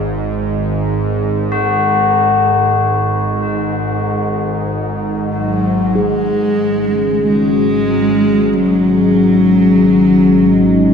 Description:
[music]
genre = dark ambient drone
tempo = 47 BPM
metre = 4/4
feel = straight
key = unclear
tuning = A4 = 440 Hz
[part]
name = bowed-like drone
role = drone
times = 0.0-10.9 s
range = G#1 to G#2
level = -18 LUFS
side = right 1 dB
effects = built-in reverb
[part]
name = bronze singing bowl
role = texture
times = 0.0-10.9 s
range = G#4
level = -23 LUFS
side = right 4 dB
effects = none
[part]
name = tubular bells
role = arpeggios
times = 1.5-10.9 s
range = F#4 to A#4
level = -18 LUFS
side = left 4 dB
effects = diffuse ambient delay
[part]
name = dark cello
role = melody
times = 5.4-10.9 s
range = F#3 to G#3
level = -13 LUFS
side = left 2 dB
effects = diffuse ambient delay
[part]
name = dark analog pad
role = sustained chords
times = 6.0-10.9 s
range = G#3 to D#5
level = -16 LUFS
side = right 1 dB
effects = chorus
[sound]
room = wet cathedral reverb, RT60 5.3 s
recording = dark, warm production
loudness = -12 LUFS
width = side -7 dB against mid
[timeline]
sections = 0.0-6.0 A section; 6.0-10.9 B section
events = filter sweep on synth drone 6.0-10.9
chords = 0.0 F#5/G#; 6.0 G#5

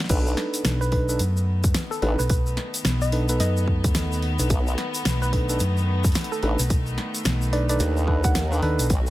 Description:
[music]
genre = glitch hop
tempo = 109 BPM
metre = 4/4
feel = swing 61% on 16ths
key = unclear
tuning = A4 = 440 Hz
[part]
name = woody wave-folded pluck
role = melody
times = 0.0-9.0 s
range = A4 to F#5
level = -33 LUFS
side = right 2 dB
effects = chorus, dub echo
[part]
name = pop drum kit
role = drums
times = 0.0-9.0 s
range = crash cymbal, hi-hat, snare drum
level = -28 LUFS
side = equal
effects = none
[part]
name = rich chamber string section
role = sustained chords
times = 0.1-9.1 s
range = D#3 to F#4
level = -33 LUFS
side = left 2 dB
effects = vintage 12-bit sampler grit, sidechain pumping
[part]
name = tine electric piano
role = stabs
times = 0.1-8.9 s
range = B3 to B4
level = -29 LUFS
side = right 1 dB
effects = sidechain pumping, dub echo
[part]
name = formant-sweep wobble bass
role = bass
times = 0.1-9.1 s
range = A1 to D#2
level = -23 LUFS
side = equal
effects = chorus, tube saturation
[part]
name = electronic kick drum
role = drums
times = 0.1-9.0 s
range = none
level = -23 LUFS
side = equal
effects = none
[part]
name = tube shaker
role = percussion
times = 0.1-9.1 s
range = none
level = -33 LUFS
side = left 2 dB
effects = none
[part]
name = hollow-body short-scale fingered electric bass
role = bass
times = 0.6-8.9 s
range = B1 to F#2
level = -23 LUFS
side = equal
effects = none
[sound]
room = digital ambience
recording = none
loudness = -20 LUFS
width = side -16 dB against mid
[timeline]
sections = 0.1-9.1 A section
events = drop 0.1-9.1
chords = 0.1 B7#9

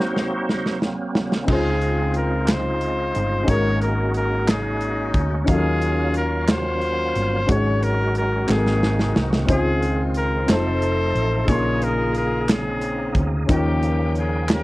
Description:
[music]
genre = slow gospel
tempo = 60 BPM (dotted quarters)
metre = 6/8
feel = straight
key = Db major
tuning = A4 = 445 Hz
[part]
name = bright tonewheel organ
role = sustained chords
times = 0.0-14.6 s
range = Db3 to G5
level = -28 LUFS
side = right 2 dB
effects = fast rotary speaker, chorus vibrato
[part]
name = modern studio drum kit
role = drums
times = 0.0-14.6 s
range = crash cymbal, hi-hat, kick drum, snare drum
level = -22 LUFS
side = equal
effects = none
[part]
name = warm horn section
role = melody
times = 1.5-14.6 s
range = Bb3 to Db5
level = -24 LUFS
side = left 1 dB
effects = none
[part]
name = warm baby grand piano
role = accompaniment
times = 1.5-14.6 s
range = Ab2 to C6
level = -26 LUFS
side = left 2 dB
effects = none
[part]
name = hollow-body short-scale fingered electric bass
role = bass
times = 1.5-14.6 s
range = F1 to Eb2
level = -24 LUFS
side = equal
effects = none
[part]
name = group handclap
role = percussion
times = 2.5-14.6 s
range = none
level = -30 LUFS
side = right 2 dB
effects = none
[sound]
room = light reverb, small room ambience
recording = worn, warbling old tape, cassette tape, warbly pitch drift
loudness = -18 LUFS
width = side -19 dB against mid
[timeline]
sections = 0.0-1.5 A section; 1.5-14.6 B section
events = drum fill 0.0-1.5, 8.5-9.5; tonewheel organ solo 0.0-1.5; stop 0.0-1.5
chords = 0.0 Ebm6/Gb; 1.5 Dbmaj9; 3.5 Ab9sus4; 5.5 Ebm9; 7.5 Ab7sus4; 8.5 Ab9; 9.5 Dbmaj9; 10.5 F7; 11.5 Bbm11; 13.5 Eb9

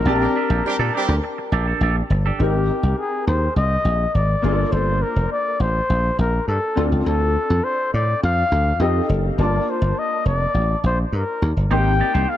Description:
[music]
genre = pop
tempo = 103 BPM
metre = 4/4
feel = straight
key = unclear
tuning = A4 = 440 Hz
[part]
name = breathy flugelhorn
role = melody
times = 0.0-12.4 s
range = G4 to G5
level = -23 LUFS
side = left 2 dB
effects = none
[part]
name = clear concert grand piano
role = accompaniment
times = 0.0-12.4 s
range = Bb3 to A5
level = -26 LUFS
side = left 2 dB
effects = ensemble chorus
[part]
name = twangy electric guitar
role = riff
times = 0.1-2.4, 11.7-12.3 s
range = D4 to D5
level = -26 LUFS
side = right 7 dB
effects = wide subtle chorus
[part]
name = dry thumbed slap bass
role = bass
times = 0.1-12.2 s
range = F1 to Bb2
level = -19 LUFS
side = equal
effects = none
[part]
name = mellow horn section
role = second line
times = 0.2-1.1 s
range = G3 to G4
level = -28 LUFS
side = right 3 dB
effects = none
[sound]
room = light reverb, small room ambience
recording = dark, warm production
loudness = -17 LUFS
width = side -12 dB against mid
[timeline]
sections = 0.0-2.4 A section; 2.4-12.4 B section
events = band accent 0.1-2.4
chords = 0.1 Bbmaj13; 2.4 Abmaj7; 4.4 Gm7; 6.8 Dm7; 8.8 F7; 9.4 Gm7; 11.7 Abmaj7

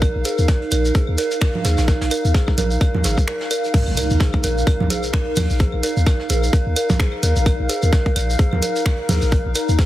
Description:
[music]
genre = minimal techno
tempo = 129 BPM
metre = 4/4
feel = swing 58% on 16ths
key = unclear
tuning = A4 = 440 Hz
[part]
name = dark detuned synth bell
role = riff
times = 0.0-9.8 s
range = Ab4 to Bb4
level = -26 LUFS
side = right 1 dB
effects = chorus, sidechain pumping, ping-pong delay
[part]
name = punchy sub bass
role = bass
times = 0.0-9.8 s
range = Ab1 to Eb2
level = -19 LUFS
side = equal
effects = sidechain pumping
[part]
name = electronic kick drum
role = drums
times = 0.0-9.9 s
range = none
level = -17 LUFS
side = equal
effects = overdrive, small room ambience
[part]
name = vintage brush drum kit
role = drums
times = 0.0-9.9 s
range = hi-hat, snare drum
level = -35 LUFS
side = right 1 dB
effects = sidechain pumping on hats, high-pass filter on hats, small room ambience, high-pass filter on snare, high-pass filter on room
[part]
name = claves and congas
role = percussion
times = 0.0-9.7 s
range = none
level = -26 LUFS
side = right 3 dB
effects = small room ambience, ping-pong delay
[part]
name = shekere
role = percussion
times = 0.0-9.9 s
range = none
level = -29 LUFS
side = right 1 dB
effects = none
[part]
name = warbly tape-like pad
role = texture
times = 0.0-9.9 s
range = Eb4 to F5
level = -25 LUFS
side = right 1 dB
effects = chorus, built-in reverb, phaser, sidechain pumping
[part]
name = garage drum kit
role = drums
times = 0.3-9.7 s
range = crash cymbal, finger snaps, hi-hat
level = -28 LUFS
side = equal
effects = overdrive, small room ambience
[part]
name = impact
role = sound effects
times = 3.7-5.6 s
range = none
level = -28 LUFS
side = equal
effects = none
[sound]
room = little or no reverb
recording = heavily compressed radio sound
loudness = -16 LUFS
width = side -14 dB against mid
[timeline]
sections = 0.0-3.7 A section; 3.7-9.9 B section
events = break 3.3-3.7; drop 3.7-9.9; impact 3.7-5.6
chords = 0.0 Bbsus4

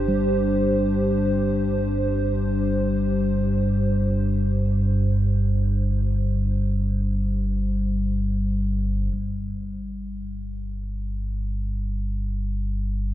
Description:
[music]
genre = ambient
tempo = free time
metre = none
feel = none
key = unclear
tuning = A4 = 440 Hz
[part]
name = dark analog pad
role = sustained chords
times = 0.0-9.1 s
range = D4 to C5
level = -27 LUFS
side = right 1 dB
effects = chorus
[part]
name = deep rumbling drone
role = drone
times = 0.0-13.1 s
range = G1 to G2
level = -24 LUFS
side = equal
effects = built-in reverb
[part]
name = bronze singing bowl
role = arpeggios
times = 0.1-13.1 s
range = G3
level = -27 LUFS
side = left 3 dB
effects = tape echo
[sound]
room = light reverb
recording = none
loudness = -21 LUFS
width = side -13 dB against mid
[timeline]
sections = 0.0-9.1 A section; 9.1-13.1 B section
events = fade-out on analog synth pad 0.0-9.1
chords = 0.0 G5; 9.1 N.C.

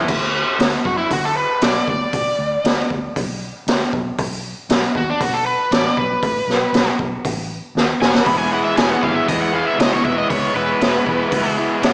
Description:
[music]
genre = blues rock power trio and southern rock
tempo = 118 BPM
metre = 4/4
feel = straight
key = unclear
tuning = A4 = 441 Hz
[part]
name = overdriven tonewheel organ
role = sustained chords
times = 0.0, 8.3-11.9 s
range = G#3 to G#4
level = -28 LUFS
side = equal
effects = none
[part]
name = biting overdriven guitar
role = riff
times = 0.0-0.1, 8.3-11.9 s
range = E3 to E4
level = -20 LUFS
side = equal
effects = slapback echo
[part]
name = vintage muted picked electric bass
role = bass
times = 0.0-11.9 s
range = E1 to D3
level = -29 LUFS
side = equal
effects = none
[part]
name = raw garage drum kit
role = drums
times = 0.1-11.9 s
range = crash cymbal, hi-hat, kick drum, snare drum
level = -18 LUFS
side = equal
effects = none
[part]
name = overdriven slide guitar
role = melody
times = 0.9-11.5 s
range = D4 to B5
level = -20 LUFS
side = equal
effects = none
[sound]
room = moderate lush hall reverb, RT60 1.9 s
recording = big arena sound, small speaker sound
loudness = -15 LUFS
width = side -32 dB against mid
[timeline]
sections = 0.1-11.9 A section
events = drum fill 7.8-8.3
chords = 0.1 N.C.; 8.0 E

